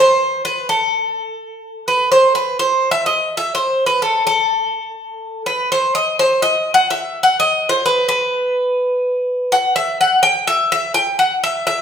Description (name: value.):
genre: greek folk.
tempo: 126 BPM.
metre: 4/4.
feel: straight.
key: A dorian sharp4.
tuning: A4 = 444 Hz.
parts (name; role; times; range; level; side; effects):
Greek bouzouki; solo; 0.0-11.8 s; A4 to G5; -14 LUFS; equal; none.
room: wet large studio reverb, RT60 1.2 s.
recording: band playing live in one room.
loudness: -14 LUFS.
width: side -8 dB against mid.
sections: 0.0-2.6 A section; 2.6-11.8 B section.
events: none.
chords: none.